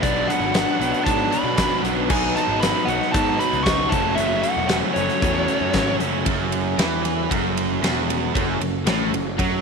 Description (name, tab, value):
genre	classic rock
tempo	115 BPM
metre	4/4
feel	straight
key	F# minor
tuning	A4 = 440 Hz
part	fuzz lead guitar	melody	0.0-5.9 s	C#5 to C#6	-24 LUFS	equal	distortion, slapback echo
part	string machine, cellos	sustained chords	0.0-9.6 s	C#4 to D#5	-31 LUFS	equal	none
part	biting overdriven guitar	riff	0.0-9.6 s	E2 to D#4	-28 LUFS	right 1 dB	none
part	crunchy overdriven guitar	riff	0.0-9.6 s	E2 to D#4	-27 LUFS	left 13 dB	none
part	tight distorted guitar	riff	0.0-9.6 s	E2 to D#4	-26 LUFS	right 15 dB	distortion
part	fuzz picked electric bass	bass	0.0-9.6 s	E1 to B2	-28 LUFS	equal	overdrive
part	huge arena drum kit	drums	0.0-9.5 s	crash cymbal, hi-hat, kick drum, ride cymbal, snare drum	-25 LUFS	equal	none
room	light reverb, studio reverb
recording	1960s-style stereo with parts hard left and right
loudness	-18 LUFS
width	side -5 dB against mid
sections	0.0-6.3 A section; 6.3-9.6 B section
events	none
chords	0.0 Bmadd9; 2.1 B; 3.9 F#m